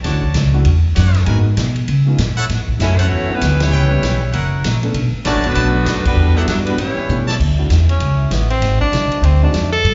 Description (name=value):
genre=jazz, big band swing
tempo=196 BPM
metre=4/4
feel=swing 62% on 8ths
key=D major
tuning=A4 = 440 Hz
part: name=warm concert grand piano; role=accompaniment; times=0.0-9.5 s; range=F#3 to A4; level=-28 LUFS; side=equal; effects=slapback echo
part: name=brilliant trumpet section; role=stabs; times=0.0-7.4 s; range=D4 to A5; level=-28 LUFS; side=equal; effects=slapback echo
part: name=upright bass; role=bass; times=0.0-9.9 s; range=D1 to C#3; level=-17 LUFS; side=equal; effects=none
part: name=swinging big-band drum kit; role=drums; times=0.0-9.9 s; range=crash cymbal, hi-hat, kick drum, ride cymbal, snare drum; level=-26 LUFS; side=equal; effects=none
part: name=edgy saxophone section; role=melody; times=2.8-7.2 s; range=F#3 to E5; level=-24 LUFS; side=equal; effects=slapback echo
part: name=bright trombone section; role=second line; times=2.8-7.3 s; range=D3 to E4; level=-26 LUFS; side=equal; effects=slapback echo
part: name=muted trombone section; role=sustained chords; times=7.4-9.9 s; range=E3 to A4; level=-35 LUFS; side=equal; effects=none
part: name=clear tenor saxophone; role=melody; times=7.9-9.9 s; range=B3 to A4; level=-21 LUFS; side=equal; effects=slapback echo
room=studio ambience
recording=live gig heard through the venue's PA, club reverb, nothing above 7.6 kHz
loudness=-16 LUFS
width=mono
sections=0.0-7.4 A section; 7.4-9.9 B section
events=band accent 3.6, 6.0; drum fill 7.1-7.4; tenor saxophone solo 7.4-9.9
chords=0.0 Dmaj7; 1.3 G#m9; 1.9 C#7; 2.5 F#m7; 3.7 C#m7b5; 4.3 F#7; 4.9 Bm9; 6.2 Em9; 6.8 A9; 7.4 Dmaj9; 8.6 G#7#11